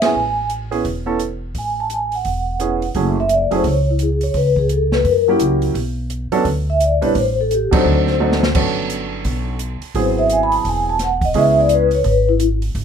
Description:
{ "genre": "jazz, small-group swing and bop", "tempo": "171 BPM", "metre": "4/4", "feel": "swing 63% on 8ths", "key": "F# minor", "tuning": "A4 = 439 Hz", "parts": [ { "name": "vibraphone with soft mallets", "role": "melody", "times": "0.0-12.4 s", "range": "E4 to B5", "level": "-17 LUFS", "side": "left 2 dB", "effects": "none" }, { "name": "warm concert grand piano", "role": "accompaniment", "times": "0.0-11.9 s", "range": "F#3 to B4", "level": "-20 LUFS", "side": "right 4 dB", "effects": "none" }, { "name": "upright bass", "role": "bass", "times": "0.0-12.8 s", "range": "E1 to F#2", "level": "-21 LUFS", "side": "equal", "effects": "none" }, { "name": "open jazz drum kit", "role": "drums", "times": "0.0-12.8 s", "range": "crash cymbal, hi-hat, kick drum, ride cymbal, snare drum, toms", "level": "-24 LUFS", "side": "equal", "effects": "none" } ], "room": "light reverb", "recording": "minimal, uncompressed stereo recording", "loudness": "-15 LUFS", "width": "side -7 dB against mid", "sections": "0.0-3.0 A section; 3.0-12.8 B section", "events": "band accent 0.0, 7.7; drum fill 8.2-8.6", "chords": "0.2 Amaj9; 3.0 F#m9; 4.4 Aadd9/C#; 5.1 F#7b9; 5.8 Bm; 7.2 Amadd11; 7.9 D7b9; 8.6 Gmaj9#11; 10.0 G#7alt; 11.4 C#m7" }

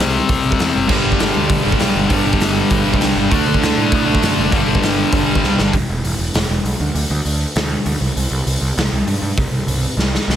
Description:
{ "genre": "punk rock", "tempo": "198 BPM", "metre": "4/4", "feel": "straight", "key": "unclear", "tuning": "A4 = 442 Hz", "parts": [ { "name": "tight distorted guitar", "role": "riff", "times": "0.0-5.7 s", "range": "G2 to D4", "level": "-17 LUFS", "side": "left 6 dB", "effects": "distortion" }, { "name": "fuzz picked electric bass", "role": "bass", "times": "0.0-10.4 s", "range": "E1 to A2", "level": "-20 LUFS", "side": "right 1 dB", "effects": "overdrive" }, { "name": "raw garage drum kit", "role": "drums", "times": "0.0-10.4 s", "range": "crash cymbal, hi-hat, kick drum, snare drum", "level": "-19 LUFS", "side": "equal", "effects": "none" }, { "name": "raw garage guitar", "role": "riff", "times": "0.9-5.7 s", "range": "G2 to D4", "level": "-20 LUFS", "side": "right 14 dB", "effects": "overdrive" } ], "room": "light reverb", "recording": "dense, heavily limited modern master", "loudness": "-14 LUFS", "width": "side -10 dB against mid", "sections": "0.0-5.7 A section; 5.7-10.4 B section", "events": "drum fill 5.4-5.7, 10.0-10.4; half time 5.7-10.4", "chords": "0.0 C5; 0.9 G5; 3.3 D; 4.5 G5; 5.7 E5; 6.8 N.C." }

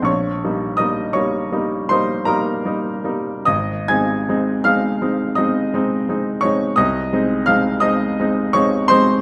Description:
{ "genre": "classical, romantic nocturne for solo piano", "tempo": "44-59 BPM (dotted quarters)", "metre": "9/8", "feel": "rubato", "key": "unclear", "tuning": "A4 = 440 Hz", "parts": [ { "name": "clear baby grand piano", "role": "solo", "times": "0.0-9.2 s", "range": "Ab1 to Ab6", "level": "-19 LUFS", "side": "equal", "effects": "none" } ], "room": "moderate recital hall reverb, RT60 1.7 s", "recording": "none", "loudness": "-19 LUFS", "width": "mono", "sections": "0.0-9.2 A section", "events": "none", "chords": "0.1 Eb7/Bb; 3.5 Ab; 6.8 Ab/C" }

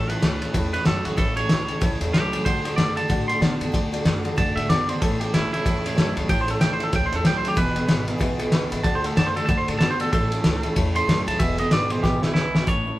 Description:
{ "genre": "rockabilly", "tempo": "188 BPM", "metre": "4/4", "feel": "swing 60% on 8ths", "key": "A major", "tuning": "A4 = 442 Hz", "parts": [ { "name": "twangy electric guitar", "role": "melody", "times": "0.0-13.0 s", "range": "E4 to C6", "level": "-26 LUFS", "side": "right 1 dB", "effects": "none" }, { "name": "clear upright piano", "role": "accompaniment", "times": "0.0-13.0 s", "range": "B4 to B5", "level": "-34 LUFS", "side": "left 2 dB", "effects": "none" }, { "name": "picked steel-string acoustic guitar", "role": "accompaniment", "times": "0.0-13.0 s", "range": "E2 to F#4", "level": "-34 LUFS", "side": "left 3 dB", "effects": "none" }, { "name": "clean electric guitar", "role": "riff", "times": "0.0-13.0 s", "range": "E2 to B3", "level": "-29 LUFS", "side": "right 2 dB", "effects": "none" }, { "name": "upright bass", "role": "bass", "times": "0.0-12.9 s", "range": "E1 to B2", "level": "-30 LUFS", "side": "equal", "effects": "none" }, { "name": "cloth-damped thuddy drum kit", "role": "drums", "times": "0.1-12.8 s", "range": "hi-hat, kick drum, ride cymbal, snare drum", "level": "-22 LUFS", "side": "equal", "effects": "none" } ], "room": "light reverb", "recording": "band playing live in one room", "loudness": "-19 LUFS", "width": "side -16 dB against mid", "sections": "0.0-12.7 A section", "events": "clean electric guitar solo 0.0-12.7; drum fill 12.0-12.7", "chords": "0.0 A; 2.5 D; 5.0 A; 7.6 E; 8.9 D; 10.1 A; 11.4 E" }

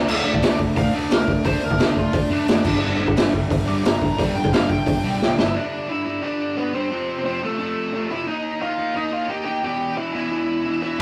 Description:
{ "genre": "punk rock", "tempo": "176 BPM", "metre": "4/4", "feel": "straight", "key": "unclear", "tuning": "A4 = 441 Hz", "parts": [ { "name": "bluesy overdriven lead guitar", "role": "melody", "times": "0.0-11.0 s", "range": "A3 to D6", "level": "-28 LUFS", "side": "equal", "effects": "distortion" }, { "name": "distorted electric guitar", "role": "riff", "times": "0.0-11.0 s", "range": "E2 to Eb4", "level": "-28 LUFS", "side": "equal", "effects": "distortion" }, { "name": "sludgy distorted guitar", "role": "riff", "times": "0.0-5.5, 11.0 s", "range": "G2 to D4", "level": "-31 LUFS", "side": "equal", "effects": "none" }, { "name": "crunchy overdriven guitar", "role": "riff", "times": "0.1-5.6, 11.0 s", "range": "G2 to D4", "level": "-30 LUFS", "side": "equal", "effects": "none" }, { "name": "overdriven picked electric bass", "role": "bass", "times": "0.1-5.5 s", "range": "G1 to A2", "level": "-34 LUFS", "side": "equal", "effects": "none" }, { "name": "raw garage drum kit", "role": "drums", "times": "0.1-5.5, 11.0 s", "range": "crash cymbal, hi-hat, kick drum, snare drum", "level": "-22 LUFS", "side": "equal", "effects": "none" } ], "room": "light reverb", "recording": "rough rehearsal-room recording, warm saturation", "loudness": "-21 LUFS", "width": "mono", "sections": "0.0-5.5 A section; 5.5-11.0 B section", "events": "lead electric guitar solo 0.0-5.5; drum fill 5.2-5.5", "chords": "0.0 D5; 2.6 G5; 5.5 G; 6.9 F; 8.3 Eb; 9.6 Em" }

